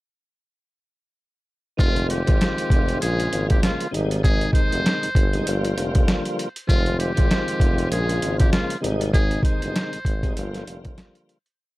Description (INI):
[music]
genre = hip hop, boom-bap hip-hop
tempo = 98 BPM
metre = 4/4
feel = swing 57% on 16ths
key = F minor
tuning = A4 = 439 Hz
[part]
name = trumpet with metal mute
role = melody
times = 1.8-10.5 s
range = F4 to C5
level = -28 LUFS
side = equal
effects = high-pass filter, low-pass filter, digital delay
[part]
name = tonewheel organ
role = accompaniment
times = 1.8-11.4 s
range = C3 to F4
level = -27 LUFS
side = left 1 dB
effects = chorus vibrato, fast rotary speaker, high-pass filter, low-pass filter
[part]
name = warm tuba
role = bass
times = 1.8-10.9 s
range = F1 to Bb1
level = -25 LUFS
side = equal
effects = none
[part]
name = boom bap sampler-style drum kit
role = drums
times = 1.8-11.6 s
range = hi-hat, kick drum, snare drum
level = -20 LUFS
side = equal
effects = none
[sound]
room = little or no reverb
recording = none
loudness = -19 LUFS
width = side -19 dB against mid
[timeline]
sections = 1.8-11.6 verse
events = fade-out 9.1-11.6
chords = 1.8 Fm7; 3.0 Bbm7; 3.9 Abmaj7; 5.5 Gm7; 6.7 Fm7; 7.9 Bbm7; 8.8 Abmaj7; 10.4 Gm7